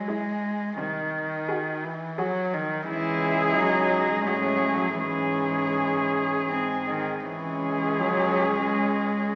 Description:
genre	classical, lyrical piece for cello ensemble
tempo	79-88 BPM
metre	3/4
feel	rubato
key	C# minor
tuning	A4 = 439 Hz
part	warm cello	accompaniment	0.0-9.4 s	D#3 to G#3	-27 LUFS	equal	none
part	dark cello	melody	0.1-9.4 s	G#4	-27 LUFS	equal	none
part	dark cello	second line	0.1-9.4 s	B#3 to F#4	-28 LUFS	equal	none
part	dark cello	bass	0.8-9.4 s	B#1 to A2	-32 LUFS	equal	none
room	wet scoring stage reverb, RT60 1.5 s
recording	heard from further back in the room, small speaker sound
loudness	-23 LUFS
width	side -37 dB against mid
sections	0.0-9.4 A section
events	none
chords	0.0 C#m (rootless); 0.8 G#7/B#; 2.9 C#m; 4.3 Amaj7; 5.0 C#m/G#; 6.5 G#; 7.3 C#m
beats	0.09 | 0.80 1.51 2.20 | 2.88 3.57 4.28 | 4.99 5.75 6.50 | 7.25 7.99 8.70

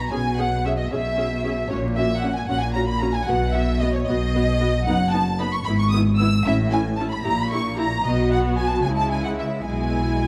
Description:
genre	quick classical-period movement for string orchestra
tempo	76 BPM (dotted quarters)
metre	6/8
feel	straight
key	B major, E major from 4.9 s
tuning	A4 = 438 Hz
part	rich studio violin section	melody	0.0-10.3 s	C#5 to E6	-29 LUFS	equal	none
part	warm chamber violin section	second line	0.0-10.3 s	C#5 to E6	-32 LUFS	equal	none
part	rich chamber cello section	bass	0.0-10.3 s	F#2 to C#3	-27 LUFS	equal	none
part	rich chamber double bass section	bass	0.0-10.3 s	F#1 to C#2	-29 LUFS	equal	none
part	rich chamber viola section	accompaniment	0.1-10.3 s	G#3 to G#4	-29 LUFS	equal	none
room	moderate recital hall reverb, RT60 1.3 s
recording	vinyl crackle, faint mains hum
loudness	-22 LUFS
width	mono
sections	0.0-10.3 A section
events	none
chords	0.1 C#m7/B; 1.7 F#/A#; 3.3 B; 4.9 B/F#; 5.7 E/G#; 6.5 A; 7.3 A#dim7; 8.1 B5; 8.9 C#m; 9.7 E/B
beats	| 0.12 0.91 | 1.71 2.50 | 3.29 4.09 | 4.88 5.67 | 6.46 7.25 | 8.05 8.86 | 9.68

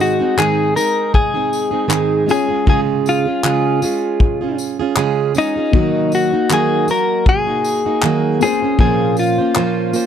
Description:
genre	acoustic pop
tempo	78 BPM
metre	4/4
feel	swing 55% on 16ths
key	Db major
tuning	A4 = 440 Hz
part	direct-recorded clean electric guitar	melody	0.0-10.1 s	Eb4 to Bb4	-17 LUFS	left 4 dB	none
part	felt-muted upright piano	accompaniment	0.0-10.1 s	Ab3 to Eb5	-25 LUFS	left 12 dB	none
part	fingerpicked plugged-in steel-string acoustic guitar	accompaniment	0.0-10.1 s	Ab2 to C5	-18 LUFS	right 8 dB	none
part	modern studio drum kit	drums	0.0-10.1 s	handclaps, kick drum, tambourine	-19 LUFS	left 1 dB	none
room	little or no reverb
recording	none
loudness	-14 LUFS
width	side -9 dB against mid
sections	0.0-10.1 A section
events	none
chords	0.0 Ab; 2.3 Db; 5.7 Ebm; 8.4 Bbmadd9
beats	0.38 1.14 1.91 | 2.67 3.44 4.20 4.97 | 5.73 6.50 7.26 8.03 | 8.79 9.56

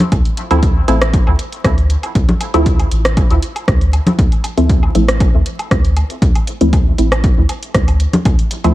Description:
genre	dub techno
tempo	118 BPM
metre	4/4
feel	straight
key	D minor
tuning	A4 = 440 Hz
part	punchy analog drum machine	drums	0.0-8.7 s	hi-hat, rim click	-21 LUFS	equal	none
part	congas and woodblock	percussion	0.0-8.7 s	none	-19 LUFS	left 1 dB	overdrive, sidechain pumping on perc, dub echo
part	soft dub sub bass	bass	0.1-8.7 s	A1 to D2	-15 LUFS	equal	sidechain pumping
part	electronic kick drum	drums	0.1-8.4 s	none	-13 LUFS	equal	none
part	filtered dub chord stab	stabs	0.5-8.7 s	F3 to E4	-18 LUFS	equal	chorus, phaser, sidechain pumping, dub echo
room	digital ambience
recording	vinyl crackle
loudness	-11 LUFS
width	side -16 dB against mid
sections	0.0-8.7 A section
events	none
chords	0.0 D5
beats	| 0.12 0.63 1.14 1.64 | 2.15 2.66 3.17 3.68 | 4.19 4.70 5.20 5.71 | 6.22 6.73 7.24 7.75 | 8.25

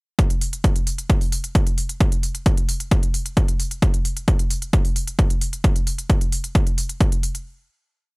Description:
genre	techno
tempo	132 BPM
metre	4/4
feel	straight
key	none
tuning	none
part	electronic hi-hat	drums	0.2-7.4 s	none	-29 LUFS	equal	sidechain pumping on hats
part	electronic kick drum	drums	0.2-7.1 s	none	-18 LUFS	equal	none
room	little or no reverb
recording	dry, gritty hardware recording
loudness	-18 LUFS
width	side -31 dB against mid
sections	0.2-7.5 groove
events	none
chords	none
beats	| 0.19 0.64 1.10 1.55 | 2.00 2.46 2.91 3.37 | 3.82 4.28 4.73 5.19 | 5.64 6.10 6.55 7.00

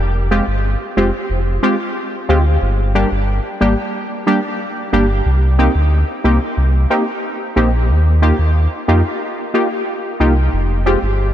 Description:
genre	dancehall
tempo	91 BPM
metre	4/4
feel	straight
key	unclear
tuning	A4 = 441 Hz
part	sub bass with octave	bass	0.0-11.3 s	F1 to F2	-14 LUFS	equal	none
part	synth brass stab	accompaniment	0.3-11.0 s	G3 to G4	-17 LUFS	equal	chorus
room	moderate huge ambient reverb, RT60 3.9 s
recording	dreamy mix soaked in reverb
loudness	-14 LUFS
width	side -11 dB against mid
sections	0.0-11.3 A section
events	none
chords	0.0 Fmadd9; 2.6 Gm; 5.3 Cm7; 7.9 Ebadd9; 10.5 Fmadd9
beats	0.64 1.30 1.96 | 2.62 3.28 3.94 4.60 | 5.26 5.92 6.57 7.23 | 7.89 8.55 9.21 9.87 | 10.53 11.19

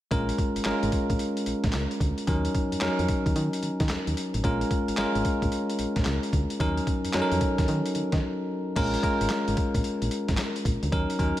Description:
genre	R&B, new jack swing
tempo	111 BPM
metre	4/4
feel	swing 64% on 16ths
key	Bb minor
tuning	A4 = 441 Hz
part	bell-like tine electric piano	accompaniment	0.1-11.4 s	Gb3 to Bb4	-27 LUFS	equal	none
part	solid FM bass	bass	0.1-11.3 s	Ab1 to Eb3	-30 LUFS	equal	none
part	boom bap sampler-style drum kit	drums	0.1-11.4 s	crash cymbal, handclaps, hi-hat, kick drum, snare drum	-29 LUFS	equal	overdrive
room	light reverb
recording	none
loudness	-24 LUFS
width	side -14 dB against mid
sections	0.1-8.8 A section; 8.8-11.4 B section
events	break 8.2-8.8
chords	0.1 Bbm7; 2.3 Ebm7; 4.4 Bbm7; 6.6 Ebm7; 8.8 Bbm7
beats	| 0.12 0.66 1.20 1.74 | 2.28 2.82 3.36 3.90 | 4.44 4.98 5.52 6.06 | 6.60 7.14 7.68 8.22 | 8.76 9.30 9.84 10.38 | 10.93

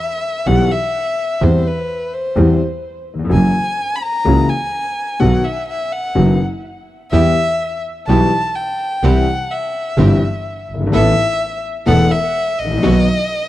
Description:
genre	tango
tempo	126 BPM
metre	4/4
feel	rubato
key	E harmonic minor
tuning	A4 = 440 Hz
part	dark violin	second line	0.0-13.5 s	B4 to B5	-19 LUFS	left 1 dB	tape echo
part	warm concert grand piano	accompaniment	0.5-13.0 s	E1 to A4	-17 LUFS	left 3 dB	none
part	clear double bass	bass	0.5-13.0 s	E1 to E2	-16 LUFS	right 2 dB	none
part	clear studio string section	stabs	7.1-13.0 s	B3 to A4	-26 LUFS	right 4 dB	none
room	small room ambience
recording	dry, close 1970s-style studio recording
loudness	-14 LUFS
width	side -14 dB against mid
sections	0.0-13.5 A section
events	violin solo 0.0-13.5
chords	0.0 Em; 1.4 C/E; 3.3 F#7; 5.2 B; 7.1 Em; 9.0 C; 10.9 Asus2; 12.8 B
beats	0.46 0.94 | 1.41 1.89 2.36 2.84 | 3.31 3.78 4.26 4.73 | 5.21 5.68 6.16 6.64 | 7.13 7.61 8.08 8.56 | 9.03 9.50 9.97 10.45 | 10.92 11.39 11.87 12.34 | 12.82 13.30

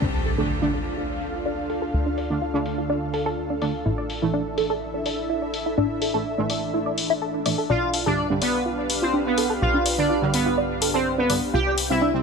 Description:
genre	melodic techno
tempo	125 BPM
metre	4/4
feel	straight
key	D dorian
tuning	A4 = 440 Hz
part	lush unison pad	sustained chords	0.0-12.2 s	D4 to G5	-29 LUFS	left 1 dB	chorus
part	tight sequenced synth	arpeggios	0.0-12.1 s	D4 to D5	-27 LUFS	equal	chorus, phaser, ping-pong delay
part	plucky analog bass	bass	0.0-12.2 s	A1 to D2	-31 LUFS	equal	none
part	impact	sound effects	0.0-1.9 s	none	-29 LUFS	equal	none
part	electronic hi-hat	drums	0.3-11.9 s	none	-30 LUFS	left 4 dB	low-pass filter on hats, low-pass filter on cymbals, low-pass filter on toms, low-pass filter on snare
part	synth brass stab	stabs	0.4-12.2 s	G2 to D4	-29 LUFS	right 3 dB	chorus, ping-pong delay
part	resonant sweep polysynth	melody	7.7-12.1 s	B3 to G4	-26 LUFS	right 1 dB	chorus, tape echo
part	airy dreamy lead	second line	7.7-12.1 s	B4 to G5	-30 LUFS	right 1 dB	chorus, ping-pong delay
room	moderate huge ambient reverb, RT60 7.7 s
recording	none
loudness	-21 LUFS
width	side -5 dB against mid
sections	0.0-12.2 A section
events	impact 0.0-1.9; filter sweep on synth arpeggio sound 0.0-12.2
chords	0.0 Dm; 3.9 Asus4; 7.7 G7/B; 11.5 Csus2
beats	| 0.02 0.50 0.98 1.46 | 1.94 2.42 2.90 3.38 | 3.86 4.34 4.82 5.30 | 5.78 6.26 6.74 7.22 | 7.70 8.18 8.66 9.14 | 9.62 10.10 10.58 11.06 | 11.54 12.02

